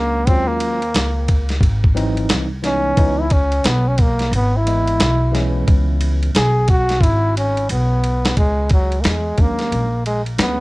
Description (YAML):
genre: hip hop, jazz-hop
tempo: 89 BPM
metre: 4/4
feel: swing 62% on 16ths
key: C# dorian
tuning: A4 = 442 Hz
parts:
  - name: bright trombone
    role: melody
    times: 0.0-10.6 s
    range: F#3 to G#4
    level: -20 LUFS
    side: equal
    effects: cassette tape, tape echo
  - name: tine electric piano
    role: accompaniment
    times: 0.0-10.6 s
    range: E3 to D#5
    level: -24 LUFS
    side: equal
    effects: overdrive, medium stereo tremolo, cassette tape
  - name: upright bass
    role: bass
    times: 0.0-10.6 s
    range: G#1 to E2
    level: -19 LUFS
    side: equal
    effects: none
  - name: dusty soul sampler-style drum kit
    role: drums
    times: 0.3-10.6 s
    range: hi-hat, kick drum, ride cymbal, snare drum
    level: -18 LUFS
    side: equal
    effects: cassette tape
room: little or no reverb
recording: home recording on cassette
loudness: -15 LUFS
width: side -21 dB against mid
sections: 0.0-8.4 A section; 8.4-10.6 B section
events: trombone solo 0.0-8.4; drum fill 7.0-8.4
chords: 0.3 D#m11; 1.6 G#7b13; 3.0 C#m9; 8.4 C#madd9; 9.7 A#7alt